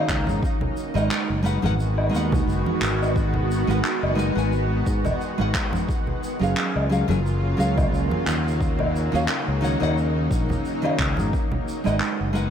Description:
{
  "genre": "sunset chillout",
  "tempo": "88 BPM",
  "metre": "4/4",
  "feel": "swing 56% on 16ths",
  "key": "G# dorian",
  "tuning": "A4 = 440 Hz",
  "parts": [
    { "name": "nylon-string guitar", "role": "accompaniment", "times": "0.0-12.5 s", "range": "D#3 to G#5", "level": "-27 LUFS", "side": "moving between left 4 dB and right 5 dB", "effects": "auto-pan, tape echo, shimmer reverb" },
    { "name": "shimmering ambient pad", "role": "sustained chords", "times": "0.0-12.5 s", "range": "C#3 to F#4", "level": "-27 LUFS", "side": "equal", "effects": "chorus, built-in reverb, shimmer reverb" },
    { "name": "overdriven fingered electric bass", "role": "bass", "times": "0.1-12.5 s", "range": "F#1 to G#2", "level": "-24 LUFS", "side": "equal", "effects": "none" },
    { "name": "electronic kick drum", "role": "drums", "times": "0.1-11.5 s", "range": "none", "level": "-26 LUFS", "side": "equal", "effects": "none" },
    { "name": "handclaps, shaker and woodblock", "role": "drums", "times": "0.1-12.5 s", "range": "none", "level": "-29 LUFS", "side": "left 1 dB", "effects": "none" },
    { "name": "congas", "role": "percussion", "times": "0.3-11.6 s", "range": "none", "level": "-30 LUFS", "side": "right 2 dB", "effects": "none" }
  ],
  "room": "light reverb, studio reverb",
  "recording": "none",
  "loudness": "-20 LUFS",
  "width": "side -8 dB against mid",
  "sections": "0.0-12.5 A section",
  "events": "none",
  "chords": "0.4 G#m7; 5.9 F#maj7; 8.3 D#m7; 11.3 G#m7"
}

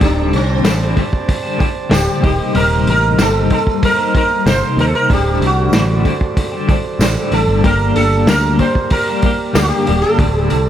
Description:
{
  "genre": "psychedelic rock",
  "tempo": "94 BPM",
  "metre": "4/4",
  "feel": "straight",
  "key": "D phrygian dominant",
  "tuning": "A4 = 440 Hz",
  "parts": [
    { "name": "sitar", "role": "melody", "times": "0.0-10.7 s", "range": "C4 to C5", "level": "-18 LUFS", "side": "right 1 dB", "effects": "analog delay" },
    { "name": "overdriven combo organ", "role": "sustained chords", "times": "0.0-10.7 s", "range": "Bb3 to A5", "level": "-26 LUFS", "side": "right 7 dB", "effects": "none" },
    { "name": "twelve-string electric guitar", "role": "riff", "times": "0.0-10.7 s", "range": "D2 to C5", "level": "-18 LUFS", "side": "left 3 dB", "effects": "tremolo, analog delay" },
    { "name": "picked electric bass", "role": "bass", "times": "0.0-10.7 s", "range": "D1 to Eb2", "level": "-16 LUFS", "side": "right 1 dB", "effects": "none" },
    { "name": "vintage drum kit", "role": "drums", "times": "0.0-10.7 s", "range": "hi-hat, kick drum, snare drum", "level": "-18 LUFS", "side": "equal", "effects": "analog delay" },
    { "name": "tambourine", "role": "percussion", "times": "0.6-9.7 s", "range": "none", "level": "-31 LUFS", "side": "right 9 dB", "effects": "none" }
  ],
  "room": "light reverb, small room ambience",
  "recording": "echo-heavy mix",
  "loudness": "-12 LUFS",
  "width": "side -10 dB against mid",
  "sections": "0.0-10.7 A section",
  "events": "none",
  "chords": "0.0 D7sus4; 2.2 Cm7/Eb; 5.1 D7sus4; 7.7 Gm"
}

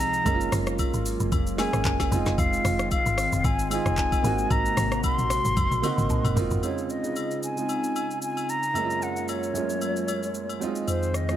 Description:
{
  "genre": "amapiano",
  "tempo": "113 BPM",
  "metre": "4/4",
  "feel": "swing 55% on 16ths",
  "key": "Db major",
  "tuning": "A4 = 439 Hz",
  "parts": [
    { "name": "mellow hollow silver concert flute", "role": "melody", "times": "0.0-11.4 s", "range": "C5 to C6", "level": "-28 LUFS", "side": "left 1 dB", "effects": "tape echo" },
    { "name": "warm concert grand piano", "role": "accompaniment", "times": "0.0-11.4 s", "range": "Gb2 to Ab4", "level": "-30 LUFS", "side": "right 5 dB", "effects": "none" },
    { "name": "hollow soft pad", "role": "sustained chords", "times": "0.0-11.4 s", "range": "C3 to Gb4", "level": "-33 LUFS", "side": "left 2 dB", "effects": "chorus, sidechain pumping" },
    { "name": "woody log drum bass", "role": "bass", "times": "0.0-6.6 s", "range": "F1 to Db2", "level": "-28 LUFS", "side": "equal", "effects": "none" },
    { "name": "smooth R&B drum kit", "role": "drums", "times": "0.0-11.4 s", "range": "handclaps, hi-hat, kick drum, rim click, shaker, snare drum, toms", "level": "-29 LUFS", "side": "equal", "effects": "none" },
    { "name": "agogo bells and woodblock", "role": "percussion", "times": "0.3-11.0 s", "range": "none", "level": "-38 LUFS", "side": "left 8 dB", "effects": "none" },
    { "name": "punchy sub bass", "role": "bass", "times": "10.9-11.4 s", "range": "F2", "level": "-26 LUFS", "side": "equal", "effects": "none" }
  ],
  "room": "light reverb, digital ambience",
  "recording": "none",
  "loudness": "-23 LUFS",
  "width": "side -11 dB against mid",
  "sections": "0.0-6.6 A section; 6.6-11.4 B section",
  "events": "drop 0.0-6.6; drum fill 5.6-6.6",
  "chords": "0.3 Gbmaj9; 2.1 Fm7; 4.2 Ab9; 6.6 Dbmaj9; 8.8 Gbmaj9; 10.6 Fm7"
}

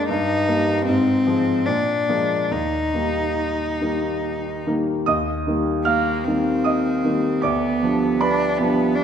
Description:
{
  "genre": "classical, romantic duo for cello and grand piano",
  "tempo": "69-80 BPM",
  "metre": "3/4",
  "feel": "rubato",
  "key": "Eb major",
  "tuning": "A4 = 438 Hz",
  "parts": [
    { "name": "rich cello", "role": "melody", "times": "0.0-9.0 s", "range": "Bb3 to Eb4", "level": "-21 LUFS", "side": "left 1 dB", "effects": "none" },
    { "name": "clear concert grand piano", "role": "accompaniment", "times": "0.0-9.0 s", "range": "D2 to F6", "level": "-21 LUFS", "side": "right 1 dB", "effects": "none" }
  ],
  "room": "moderate scoring stage reverb, RT60 1.6 s",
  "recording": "none",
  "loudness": "-18 LUFS",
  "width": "side -8 dB against mid",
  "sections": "0.0-5.1 A section; 5.1-9.0 A section",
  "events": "none",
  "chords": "0.1 Eb/G; 0.9 Fm/Ab; 1.7 Bb7; 2.5 Eb; 7.4 G7/D"
}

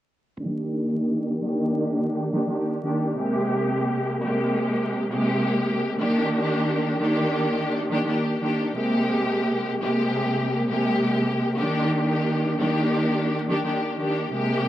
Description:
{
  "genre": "hip hop",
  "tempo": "86 BPM",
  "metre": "4/4",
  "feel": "swing 55% on 16ths",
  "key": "Eb major",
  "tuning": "A4 = 440 Hz",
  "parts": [
    { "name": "warm studio string section", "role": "solo", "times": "0.4-14.7 s", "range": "C3 to G4", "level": "-22 LUFS", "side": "equal", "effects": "cassette tape, high-pass filter, low-pass filter" }
  ],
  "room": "light reverb, studio reverb",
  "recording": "dark, warm production, vinyl crackle",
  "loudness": "-22 LUFS",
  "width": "side -13 dB against mid",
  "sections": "0.4-6.0 A section; 6.0-14.7 B section",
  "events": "filter sweep on string section 0.4-6.0",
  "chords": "0.4 Ebmaj7; 3.2 Abmaj9; 6.0 Ebmaj7; 8.8 Abmaj9; 11.5 Ebmaj7"
}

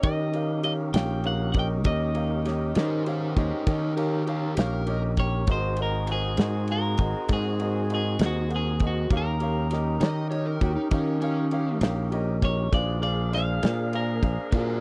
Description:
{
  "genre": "slow blues",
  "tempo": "66 BPM (dotted quarters)",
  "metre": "12/8",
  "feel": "straight",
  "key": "Eb mixolydian",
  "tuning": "A4 = 439 Hz",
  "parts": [
    { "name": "electric guitar at the edge of break-up", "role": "melody", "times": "0.0-14.5 s", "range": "Gb4 to G5", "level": "-34 LUFS", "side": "equal", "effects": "none" },
    { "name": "clear concert grand piano", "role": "accompaniment", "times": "0.0-14.8 s", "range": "Gb4 to G5", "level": "-35 LUFS", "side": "equal", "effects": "none" },
    { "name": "mellow saxophone section", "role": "sustained chords", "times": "0.0-14.8 s", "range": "Bb3 to Ab4", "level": "-41 LUFS", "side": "equal", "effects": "none" },
    { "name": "tonewheel organ", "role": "sustained chords", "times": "0.0-14.8 s", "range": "Eb3 to F5", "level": "-40 LUFS", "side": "equal", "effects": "none" },
    { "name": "sustaining fretless electric bass", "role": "bass", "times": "0.0-14.8 s", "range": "Ab1 to Eb3", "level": "-29 LUFS", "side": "equal", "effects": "none" },
    { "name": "warm soul drum kit", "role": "drums", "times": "0.0-14.7 s", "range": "kick drum, ride cymbal, snare drum", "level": "-27 LUFS", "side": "equal", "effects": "none" },
    { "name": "overdriven slide guitar", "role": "second line", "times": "2.8-14.8 s", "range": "Db4 to Eb5", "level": "-34 LUFS", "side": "equal", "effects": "none" }
  ],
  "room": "little or no reverb",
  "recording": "dry, close 1970s-style studio recording",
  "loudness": "-26 LUFS",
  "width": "mono",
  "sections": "0.0-14.8 A section",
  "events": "none",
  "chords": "0.0 Eb7; 5.5 Ab7; 9.1 Eb7; 12.7 Bb7"
}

